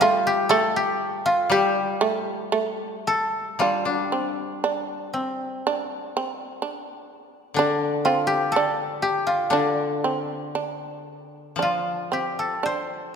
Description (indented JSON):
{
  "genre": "japanese traditional, Japanese chamber music",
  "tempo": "56-64 BPM",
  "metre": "2/4",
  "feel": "rubato",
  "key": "G suspended pentatonic",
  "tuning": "A4 = 441 Hz",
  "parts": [
    { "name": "koto", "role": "melody", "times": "0.0-13.2 s", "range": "C4 to C5", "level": "-23 LUFS", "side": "left 1 dB", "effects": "none" },
    { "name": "shamisen", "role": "second line", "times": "0.0-13.2 s", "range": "G3 to D4", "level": "-26 LUFS", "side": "right 4 dB", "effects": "none" },
    { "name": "koto", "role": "accompaniment", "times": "0.0-13.2 s", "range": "D3 to D4", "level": "-30 LUFS", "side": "left 4 dB", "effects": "none" }
  ],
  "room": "wet church reverb, RT60 2.8 s",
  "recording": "minimal, uncompressed stereo recording",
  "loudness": "-22 LUFS",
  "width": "side -6 dB against mid",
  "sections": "0.0-3.6 A section; 3.6-13.2 B section",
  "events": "none",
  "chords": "none",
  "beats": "0.53 | 1.51 2.54 | 3.60 4.64 | 5.65 6.62 | 7.57 8.54 | 9.52 10.53 | 11.58 12.63"
}